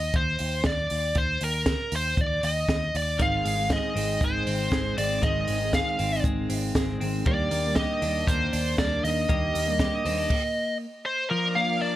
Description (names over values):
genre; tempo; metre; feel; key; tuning
jangly indie pop; 118 BPM; 4/4; straight; unclear; A4 = 440 Hz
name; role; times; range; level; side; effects
bluesy overdriven lead guitar; melody; 0.0-12.0 s; Bb4 to F5; -27 LUFS; equal; distortion
vintage muted picked electric bass; bass; 0.0-10.3 s; Ab1 to Eb2; -30 LUFS; equal; none
compact cocktail drum kit; drums; 0.1-10.4 s; crash cymbal, hi-hat, kick drum, snare drum; -28 LUFS; equal; none
fingerpicked steel-string acoustic guitar; accompaniment; 3.2-10.3 s; Ab2 to Eb4; -34 LUFS; right 6 dB; none
twelve-string electric guitar; arpeggios; 3.2-12.0 s; Eb3 to Ab4; -31 LUFS; left 3 dB; none
string machine, full ensemble; sustained chords; 11.3-12.0 s; Bb4 to D6; -34 LUFS; left 1 dB; ensemble chorus
room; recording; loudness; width
light reverb; none; -23 LUFS; side -14 dB against mid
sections
0.0-11.3 A section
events
stop 10.3-11.3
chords
0.0 Eb5; 3.2 Ab; 7.3 Ebmaj7; 11.3 Bb